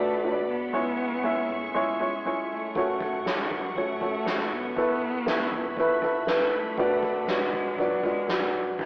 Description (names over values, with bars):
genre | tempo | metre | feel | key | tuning
piano-driven pop | 119 BPM | 4/4 | straight | unclear | A4 = 440 Hz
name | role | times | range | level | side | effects
dark cello | melody | 0.0-8.9 s | E3 to B3 | -32 LUFS | equal | tape echo
dark upright piano | accompaniment | 0.0-8.8 s | G#3 to E5 | -26 LUFS | equal | none
warm studio string section | sustained chords | 0.0-8.8 s | D4 to C#6 | -37 LUFS | equal | none
vintage muted fingered electric bass | bass | 0.0-8.8 s | E1 to G#1 | -51 LUFS | equal | none
soft-mallet drum kit | drums | 2.8-8.9 s | crash cymbal, kick drum, snare drum | -30 LUFS | equal | none
room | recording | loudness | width
moderate stone room reverb, RT60 1.4 s | rough rehearsal-room recording, warm saturation, telephone sound | -24 LUFS | side -25 dB against mid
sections
0.0-8.9 A section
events
none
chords
0.0 Bm/F#; 0.7 C#m; 2.7 F#m; 4.8 Esus4; 6.8 Bm/F#